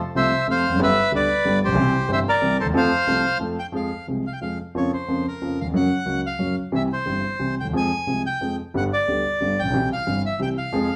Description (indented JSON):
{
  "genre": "tango",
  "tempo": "182 BPM",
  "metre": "3/4",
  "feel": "rubato",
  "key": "F major, F harmonic minor from 3.7 s",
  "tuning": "A4 = 440 Hz",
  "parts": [
    { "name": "bandoneon", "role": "melody", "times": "0.2-11.0 s", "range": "G4 to Ab5", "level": "-25 LUFS", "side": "equal", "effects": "plate reverb" },
    { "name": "warm grand piano", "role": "accompaniment", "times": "0.2-10.9 s", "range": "G1 to A4", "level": "-25 LUFS", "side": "equal", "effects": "none" }
  ],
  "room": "wet studio reverb, RT60 0.8 s",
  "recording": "heard from further back in the room",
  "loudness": "-22 LUFS",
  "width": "mono",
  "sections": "0.0-3.7 A section; 3.7-11.0 B section",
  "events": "none",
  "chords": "0.0 F; 0.8 G; 1.8 C; 2.7 F; 3.7 Fm; 4.8 Bbmadd9/F; 5.7 Gb; 6.7 C; 7.7 Fm; 8.7 G; 9.7 C"
}